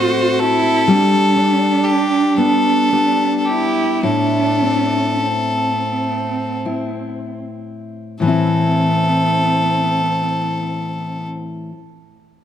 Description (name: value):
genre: celtic folk, Celtic slow air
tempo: 24-42 BPM (dotted quarters)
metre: 6/8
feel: rubato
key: A minor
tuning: A4 = 438 Hz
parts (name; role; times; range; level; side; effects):
- clear fiddle; melody; 0.0-11.3 s; G4 to C5; -19 LUFS; left 1 dB; none
- dark cello; second line; 0.0-11.3 s; C4 to F#4; -20 LUFS; right 4 dB; none
- fingerpicked steel-string acoustic guitar; accompaniment; 0.0-11.8 s; A2 to G4; -19 LUFS; left 3 dB; none
room: moderate concert hall reverb, RT60 2.2 s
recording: none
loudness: -14 LUFS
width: side -10 dB against mid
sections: 0.0-8.2 A section; 8.2-12.4 B section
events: slowing down 0.9-8.2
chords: 0.0 D7/A (rootless); 0.9 G; 4.0 Am